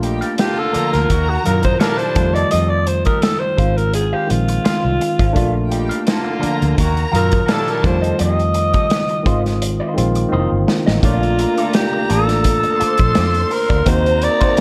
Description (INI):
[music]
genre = lush 1970s-style soul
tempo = 85 BPM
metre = 4/4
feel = swing 54% on 16ths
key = Bb major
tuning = A4 = 440 Hz
[part]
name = warm studio string section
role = second line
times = 0.0-14.6 s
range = Bb3 to C6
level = -29 LUFS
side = equal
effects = none
[part]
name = mellow tine electric piano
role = accompaniment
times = 0.0-14.6 s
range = Bb2 to D5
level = -24 LUFS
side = equal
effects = none
[part]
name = electric guitar through a small old amp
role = riff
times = 0.0-14.6 s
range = Eb4 to F5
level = -30 LUFS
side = equal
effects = wah
[part]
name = clear horn section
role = stabs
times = 0.0-8.0 s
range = A2 to G4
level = -29 LUFS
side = equal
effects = tape echo
[part]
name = vintage muted fingered electric bass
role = bass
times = 0.0-14.3 s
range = F1 to Gb2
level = -21 LUFS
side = equal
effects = none
[part]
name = vintage drum kit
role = drums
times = 0.0-14.6 s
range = hi-hat, kick drum, snare drum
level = -22 LUFS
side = equal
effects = none
[part]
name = growling alto saxophone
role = melody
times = 0.4-14.6 s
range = F4 to Eb5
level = -21 LUFS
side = equal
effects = none
[sound]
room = light reverb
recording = dark, warm production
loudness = -16 LUFS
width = mono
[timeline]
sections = 0.0-11.0 A section; 11.0-14.6 B section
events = alto saxophone solo 0.0-11.0; drum fill 10.3-11.0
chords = 0.0 Bbmaj7; 1.1 Ebmadd9; 2.2 F9; 3.6 Ab6; 5.4 Bbmaj7; 6.8 Ebmadd9; 7.9 F9; 9.3 Ab6; 10.3 F7sus4; 11.0 Bbmaj7; 13.9 Ebm6